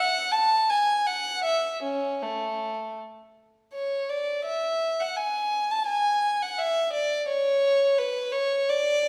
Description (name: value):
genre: classical, baroque-style suite movement for unaccompanied violin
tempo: 78-86 BPM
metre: 3/4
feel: rubato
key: A major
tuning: A4 = 440 Hz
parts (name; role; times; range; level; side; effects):
- warm violin; solo; 0.0-9.1 s; A3 to A5; -26 LUFS; equal; none
room: wet recital hall reverb, RT60 1.4 s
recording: recorded in a church or concert hall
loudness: -26 LUFS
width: mono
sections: 0.0-9.1 A section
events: none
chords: none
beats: 0.70 | 1.45 2.22 2.97 | 3.73 4.45 5.17 | 5.88 6.58 7.29 | 7.98 8.68